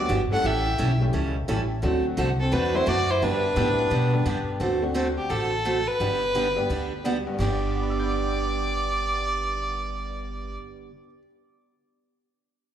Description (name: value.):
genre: country, western swing.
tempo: 173 BPM.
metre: 4/4.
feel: swing 64% on 8ths.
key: G major.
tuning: A4 = 440 Hz.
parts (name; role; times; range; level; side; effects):
clear fiddle; melody; 0.0-10.6 s; G4 to F#5; -27 LUFS; equal; slapback echo.
dark fiddle; second line; 0.0-4.5 s; C4 to A4; -31 LUFS; right 1 dB; slapback echo.
tack piano; accompaniment; 0.0-11.3 s; G2 to D7; -32 LUFS; left 4 dB; slapback echo.
upright bass; bass; 0.0-10.6 s; G1 to B2; -28 LUFS; equal; none.
picked steel-string acoustic guitar; accompaniment; 0.1-10.9 s; G2 to A4; -29 LUFS; right 4 dB; slapback echo.
room: moderate plate reverb, RT60 2.6 s.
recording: live gig heard through the venue's PA, club reverb.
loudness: -22 LUFS.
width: side -10 dB against mid.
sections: 0.0-4.6 A section; 4.6-7.4 B section; 7.4-10.2 C section.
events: none.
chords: 0.4 A7; 1.8 D7; 3.2 G; 4.6 D7; 6.0 G.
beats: 0.09 | 0.44 0.79 1.13 1.48 | 1.83 2.18 2.52 2.87 | 3.22 3.56 3.91 4.26 | 4.61 4.96 5.30 5.65 | 6.00 6.35 6.70 7.04 | 7.39 7.74 8.09 8.44 | 8.79 9.13 9.48 9.83.